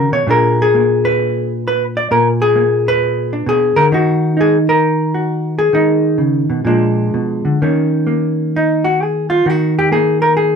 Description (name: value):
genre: solo jazz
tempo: 132 BPM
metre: 4/4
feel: swing 66% on 8ths, rubato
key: Eb minor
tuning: A4 = 443 Hz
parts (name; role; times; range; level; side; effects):
- hollow-body jazz guitar; solo; 0.0-10.6 s; Bb2 to D5; -12 LUFS; equal; none
room: moderate studio ambience, RT60 0.5 s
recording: none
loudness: -12 LUFS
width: side -6 dB against mid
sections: 0.0-7.6 A section; 7.6-10.6 B section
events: hollow-body jazz guitar solo 7.6-10.6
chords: 0.3 Bb7b9; 3.9 Ebm; 6.7 Bb7b9; 7.6 Eb5